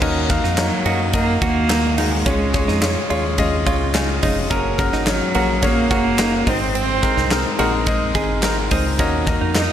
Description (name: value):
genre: piano-driven pop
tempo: 107 BPM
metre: 4/4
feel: straight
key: Eb minor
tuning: A4 = 440 Hz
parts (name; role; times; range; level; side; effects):
- warm concert grand piano; accompaniment; 0.0-9.7 s; Ab2 to Ab5; -21 LUFS; left 3 dB; none
- direct-recorded clean electric guitar; riff; 0.0-9.7 s; C4 to Ab4; -26 LUFS; right 8 dB; none
- fingered electric bass; bass; 0.0-9.7 s; F1 to Gb2; -24 LUFS; equal; none
- huge arena drum kit; drums; 0.0-9.7 s; crash cymbal, handclaps, hi-hat, kick drum, ride cymbal, snare drum; -22 LUFS; equal; none
- group handclap; percussion; 0.3-9.7 s; none; -34 LUFS; left 5 dB; none
- rich cello; melody; 0.6-9.7 s; Gb3 to Eb4; -21 LUFS; right 2 dB; none
room: light reverb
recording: none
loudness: -16 LUFS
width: side -10 dB against mid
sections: 0.0-9.7 A section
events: grand piano fill 3.4-4.5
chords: 0.0 Ebm; 2.3 Db; 4.5 Gbadd9; 6.5 Ab; 9.0 Ebm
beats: | 0.02 0.58 1.14 1.70 | 2.26 2.83 3.39 3.95 | 4.51 5.07 5.63 6.19 | 6.75 7.31 7.87 8.43 | 8.99 9.56